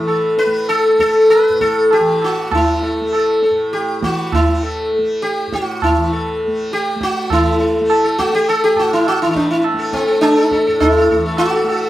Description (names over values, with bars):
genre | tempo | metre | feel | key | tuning
indian classical, Hindustani | 101 BPM | 4/4 | straight | A raga kafi | A4 = 439 Hz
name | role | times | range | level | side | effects
sitar | melody | 0.0-11.9 s | C4 to B4 | -14 LUFS | equal | none
tanpura | drone | 0.0-11.9 s | A2 to A3 | -25 LUFS | equal | none
tabla | percussion | 0.1-11.9 s | none | -20 LUFS | right 2 dB | none
room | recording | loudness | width
light reverb | band playing live in one room | -13 LUFS | side -14 dB against mid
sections
0.0-7.3 A section; 7.3-11.9 B section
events
speeding up 0.0-11.9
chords
none